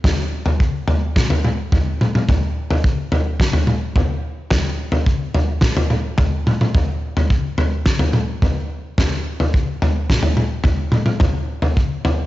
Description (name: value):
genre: rock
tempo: 108 BPM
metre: 4/4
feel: straight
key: none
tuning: none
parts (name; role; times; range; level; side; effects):
- loose indie drum kit; drums; 0.0-12.2 s; kick drum, snare drum, toms; -16 LUFS; equal; cassette tape
room: light reverb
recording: home recording on cassette, nothing above 7.6 kHz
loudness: -16 LUFS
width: side -16 dB against mid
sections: 0.0-12.3 A section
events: none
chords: none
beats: 0.05 0.61 1.17 | 1.73 2.29 2.84 3.40 | 3.96 4.52 5.08 5.64 | 6.20 6.75 7.31 7.87 | 8.43 8.98 9.54 10.10 | 10.66 11.21 11.77